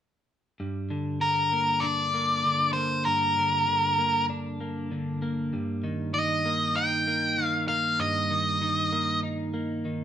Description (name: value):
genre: rock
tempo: 97 BPM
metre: 4/4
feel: straight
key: G minor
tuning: A4 = 439 Hz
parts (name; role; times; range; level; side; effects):
- twelve-string electric guitar; arpeggios; 0.6-10.0 s; G2 to Eb4; -30 LUFS; right 1 dB; none
- octave-fuzz lead guitar; melody; 1.2-9.2 s; Bb4 to G5; -24 LUFS; left 1 dB; distortion
room: moderate studio reverb, RT60 0.7 s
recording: band playing live in one room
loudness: -24 LUFS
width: side -10 dB against mid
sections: 0.6-10.0 A section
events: none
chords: 0.6 Gm; 5.5 Eb/G